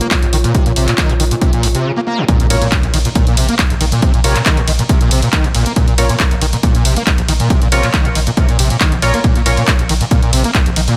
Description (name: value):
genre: driving peak-time techno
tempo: 138 BPM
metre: 4/4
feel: straight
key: Bb minor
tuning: A4 = 441 Hz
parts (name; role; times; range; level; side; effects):
- overdriven acid bass; riff; 0.0-11.0 s; Bb1 to Bb3; -19 LUFS; equal; distortion, ensemble chorus, sidechain pumping, dub echo
- punchy analog drum machine; drums; 0.0-11.0 s; handclaps, hi-hat, ride cymbal; -21 LUFS; equal; none
- warbly tape-like pad; texture; 0.0-1.9 s; F4 to Db6; -27 LUFS; equal; chorus, built-in reverb, sidechain pumping
- electronic kick drum; drums; 0.1-10.6 s; none; -17 LUFS; equal; none
- warm sub bass; bass; 0.2-10.9 s; Bb1; -20 LUFS; equal; sidechain pumping, low-pass filter
- impact; sound effects; 2.3-4.0 s; none; -27 LUFS; equal; none
- sync-sweep polysynth; stabs; 2.5-9.6 s; F4 to Db5; -24 LUFS; equal; lush chorus, sidechain pumping, dub echo
room: light reverb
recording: none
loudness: -13 LUFS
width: mono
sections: 0.0-2.3 A section; 2.3-11.0 B section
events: break 1.9-2.3; drop 2.3-11.0; impact 2.3-4.0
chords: 0.0 Bbm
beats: 0.11 | 0.55 0.98 1.42 1.85 | 2.29 2.72 3.15 3.59 | 4.02 4.46 4.89 5.33 | 5.76 6.20 6.63 7.07 | 7.50 7.94 8.37 8.81 | 9.24 9.68 10.11 10.55